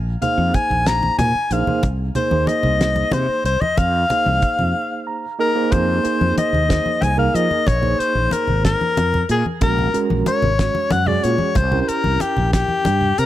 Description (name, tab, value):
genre	electric jazz fusion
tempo	62 BPM (dotted quarters)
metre	6/8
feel	straight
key	F minor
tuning	A4 = 440 Hz
part	fretless electric bass	bass	0.0-13.3 s	Ab1 to F3	-20 LUFS	equal	lush chorus
part	clear soprano saxophone	melody	0.2-13.3 s	G4 to Bb5	-20 LUFS	left 3 dB	none
part	reed electric piano	accompaniment	0.2-12.9 s	Ab3 to Bb5	-24 LUFS	right 5 dB	fast tremolo
part	damped 70s drum kit	drums	0.2-13.3 s	hi-hat, kick drum, snare drum	-22 LUFS	equal	none
part	congas	percussion	0.2-13.3 s	none	-25 LUFS	left 1 dB	none
room	light reverb, small room ambience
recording	none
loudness	-16 LUFS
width	side -13 dB against mid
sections	0.0-5.7 A section; 5.7-13.3 B section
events	break 4.8-5.7; reed electric piano fill 4.8-5.7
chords	0.0 Bbsus2; 1.8 Abadd9/C; 3.8 Fm7; 7.7 Bbsus2; 9.6 Ab9sus4; 11.6 C7b9